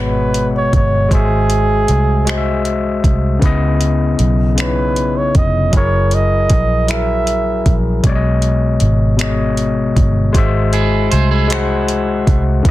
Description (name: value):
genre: slow six-eight R&B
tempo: 52 BPM (dotted quarters)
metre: 6/8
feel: straight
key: unclear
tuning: A4 = 444 Hz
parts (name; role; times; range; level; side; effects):
- warm flugelhorn; melody; 0.0-7.8 s; G#4 to E5; -18 LUFS; right 3 dB; plate reverb
- overdriven tine electric piano; accompaniment; 0.0-12.7 s; B2 to F#5; -18 LUFS; left 4 dB; none
- vintage muted fingered electric bass; bass; 0.0-12.7 s; E#1 to C#2; -16 LUFS; equal; none
- smooth R&B drum kit; drums; 0.3-12.7 s; finger snaps, hi-hat, kick drum; -16 LUFS; equal; soft clipping on snare
- electric guitar at the edge of break-up; second line; 10.7-12.4 s; E4 to B#4; -20 LUFS; right 7 dB; none
room: light reverb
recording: dense, heavily limited modern master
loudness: -12 LUFS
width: side -16 dB against mid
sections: 0.0-12.7 A section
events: none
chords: 0.0 B69; 1.1 G#7b13; 3.4 C#m9; 5.7 F#9; 8.0 B69; 10.3 G#7b13